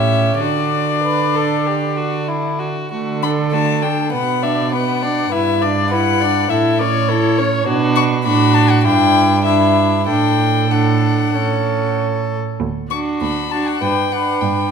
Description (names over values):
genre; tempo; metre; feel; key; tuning
quick classical-period movement for string quartet; 94-104 BPM; 4/4; rubato; D major; A4 = 445 Hz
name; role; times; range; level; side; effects
warm violin; melody; 0.0-14.7 s; C#5 to C#6; -19 LUFS; left 8 dB; none
warm violin; second line; 0.0-14.7 s; E4 to D5; -22 LUFS; left 3 dB; none
warm viola; accompaniment; 0.0-14.7 s; A3 to E4; -20 LUFS; right 3 dB; none
rich cello; bass; 0.0-14.7 s; D2 to D3; -20 LUFS; right 5 dB; none
room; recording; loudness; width
moderate scoring stage reverb, RT60 1.8 s; minimal, uncompressed stereo recording; -14 LUFS; side -6 dB against mid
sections
0.0-2.9 A section; 2.9-14.7 A section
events
none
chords
0.4 D; 4.1 Bm; 5.3 Em7/G; 6.5 A; 7.7 Bm; 8.8 Em7/G; 10.1 D/A; 11.3 A; 12.6 D; 13.8 G